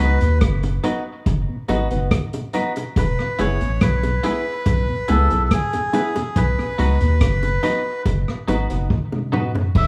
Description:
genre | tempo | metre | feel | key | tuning
roots reggae | 71 BPM | 4/4 | straight | unclear | A4 = 440 Hz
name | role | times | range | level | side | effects
melodica | melody | 0.0-9.9 s | G#4 to E5 | -26 LUFS | equal | tape echo
mellow tonewheel organ | accompaniment | 0.0-9.6 s | E2 to E4 | -31 LUFS | equal | slow rotary speaker, dub echo
twangy electric guitar | accompaniment | 0.0-9.5 s | D#4 to B4 | -33 LUFS | equal | lush chorus, tape echo
warm upright piano | stabs | 0.0-9.6 s | B3 to B4 | -31 LUFS | equal | none
warm sub bass | bass | 0.0-9.9 s | E1 to D#2 | -22 LUFS | equal | none
vintage drum kit | drums | 0.2-9.9 s | crash cymbal, hi-hat, kick drum, rim click, toms | -24 LUFS | equal | dub echo
bongos | percussion | 0.6-9.9 s | none | -32 LUFS | equal | none
room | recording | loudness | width
small room ambience | rough home demo mix | -20 LUFS | mono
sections
0.0-9.9 A section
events
drum fill 8.9-9.7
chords
0.0 B; 3.0 E; 6.4 B

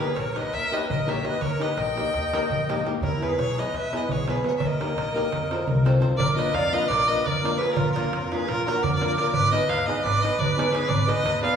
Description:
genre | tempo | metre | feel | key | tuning
balkan folk, Balkan wedding band | 341 BPM (eighths) | 9/8 | straight | Eb phrygian dominant | A4 = 439 Hz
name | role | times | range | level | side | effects
bright fiddle | melody | 0.0-11.6 s | Bb4 to G5 | -26 LUFS | equal | none
musette accordion | second line | 0.0-11.6 s | E4 to Eb5 | -30 LUFS | equal | none
flamenco guitar | accompaniment | 0.0-11.5 s | Bb3 to C5 | -29 LUFS | left 1 dB | none
upright bass | bass | 0.0-11.4 s | Ab1 to F2 | -29 LUFS | left 1 dB | none
darbuka | percussion | 0.2-11.5 s | none | -29 LUFS | right 2 dB | none
room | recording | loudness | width
wet recital hall reverb, RT60 1.4 s | recorded in a church or concert hall | -21 LUFS | side -7 dB against mid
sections
0.0-6.2 A section; 6.2-11.6 B section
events
speeding up 0.0-11.6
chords
0.0 Eb; 3.0 E; 4.6 Eb; 5.3 F7; 6.2 Bb; 9.3 Abm

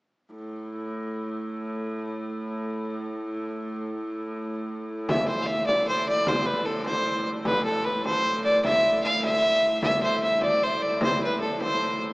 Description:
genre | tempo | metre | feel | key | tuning
medieval dance | 101 BPM (dotted quarters) | 6/8 | straight | A minor | A4 = 440 Hz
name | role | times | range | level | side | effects
clear hurdy-gurdy | drone | 0.3-12.1 s | A2 | -31 LUFS | equal | none
clear fiddle | melody | 5.1-12.0 s | A4 to F5 | -23 LUFS | equal | none
frame drum | percussion | 5.1-12.1 s | none | -31 LUFS | equal | none
room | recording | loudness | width
wet cathedral reverb, RT60 5.4 s | recorded in a church or concert hall, small speaker sound | -23 LUFS | side -22 dB against mid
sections
0.3-5.1 A section; 5.1-12.1 B section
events
none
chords
none

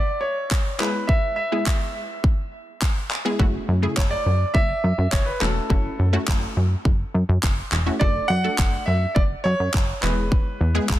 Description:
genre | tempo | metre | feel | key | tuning
dance-pop | 104 BPM | 4/4 | straight | F# minor | A4 = 441 Hz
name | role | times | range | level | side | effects
warm concert grand piano | melody | 0.0-11.0 s | A4 to F#5 | -26 LUFS | right 1 dB | digital delay
pop drum kit | drums | 0.5-11.0 s | handclaps, kick drum | -22 LUFS | equal | none
wide unison pluck | accompaniment | 0.8-11.0 s | C#3 to A4 | -27 LUFS | left 1 dB | sidechain pumping
plucky analog bass | bass | 3.4-11.0 s | E1 to F#2 | -22 LUFS | equal | sidechain pumping
room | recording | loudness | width
little or no reverb | dense, heavily limited modern master | -19 LUFS | side -14 dB against mid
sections
0.0-11.0 A section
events
none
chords
0.0 N.C.; 0.8 E; 3.4 F#m7; 8.0 D/F#; 10.0 E

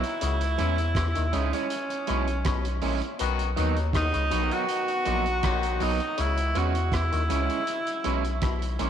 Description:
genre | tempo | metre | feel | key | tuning
roots reggae | 80 BPM | 4/4 | straight | unclear | A4 = 440 Hz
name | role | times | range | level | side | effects
warm tenor saxophone | melody | 0.0-8.8 s | C#4 to F#4 | -29 LUFS | right 1 dB | tape echo
electric guitar at the edge of break-up | accompaniment | 0.0-8.9 s | F#3 to E4 | -32 LUFS | right 9 dB | tape echo
soft dub sub bass | bass | 0.0-8.9 s | A#1 to E2 | -27 LUFS | left 1 dB | none
cloth-damped thuddy drum kit | drums | 0.0-8.9 s | hi-hat, kick drum, rim click | -34 LUFS | right 3 dB | none
auto-wah clav | riff | 0.2-8.9 s | A#2 to E3 | -35 LUFS | left 10 dB | overdrive
clear horn section | second line | 3.2-6.0 s | B2 to F#4 | -35 LUFS | left 10 dB | tape echo
room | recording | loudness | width
moderate echo chamber reverb, RT60 2.3 s | 1960s-style stereo with parts hard left and right | -24 LUFS | side -9 dB against mid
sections
0.0-8.9 A section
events
none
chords
0.2 C#m; 3.2 B; 6.2 C#m

